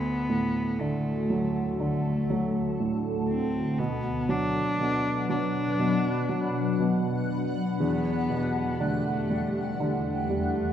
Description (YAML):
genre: pop ballad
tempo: 60 BPM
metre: 4/4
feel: straight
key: E minor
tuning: A4 = 439 Hz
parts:
  - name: dark cello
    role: melody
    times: 0.0-10.7 s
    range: A3 to D4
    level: -30 LUFS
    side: left 1 dB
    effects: none
  - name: warm baby grand piano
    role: accompaniment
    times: 0.0-10.7 s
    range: D2 to G3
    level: -29 LUFS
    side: right 2 dB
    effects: none
  - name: shimmering ambient pad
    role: sustained chords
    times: 0.7-10.7 s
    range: D2 to F#5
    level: -29 LUFS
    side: left 2 dB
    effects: chorus, built-in reverb, phaser
room: light reverb, studio reverb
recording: rough home demo mix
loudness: -25 LUFS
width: side -9 dB against mid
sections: 0.0-10.7 A section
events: none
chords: 0.0 D; 3.8 Bm; 7.8 Em7